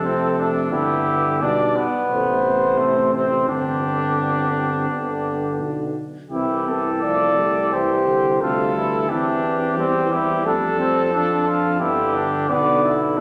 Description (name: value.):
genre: classical, brass quintet.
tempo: 87 BPM.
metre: 4/4.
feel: rubato.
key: unclear.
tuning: A4 = 439 Hz.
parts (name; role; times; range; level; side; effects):
warm trumpet; melody; 0.0-13.2 s; G4 to D5; -24 LUFS; equal; none.
warm trumpet; second line; 0.0-13.2 s; A3 to A4; -25 LUFS; equal; none.
bright trombone; accompaniment; 0.0-13.2 s; B2 to G3; -30 LUFS; equal; none.
mellow French horn; accompaniment; 0.0-13.2 s; G3 to D4; -31 LUFS; equal; none.
warm tuba; bass; 0.0-13.2 s; G1 to F2; -29 LUFS; equal; none.
room: wet recital hall reverb, RT60 1.5 s.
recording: none.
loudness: -20 LUFS.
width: mono.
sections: 0.0-13.2 A section.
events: none.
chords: 0.0 Dm/F; 0.7 G; 2.1 Am; 3.5 Gsus4; 4.9 G; 6.3 C; 9.1 C/E; 10.5 Dm/F; 11.8 G.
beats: 0.05 | 0.73 1.43 2.11 2.79 | 3.49 4.19 4.90 5.61 | 6.31 7.04 7.73 8.42 | 9.09 9.78 10.46 11.13 | 11.80 12.50 13.18.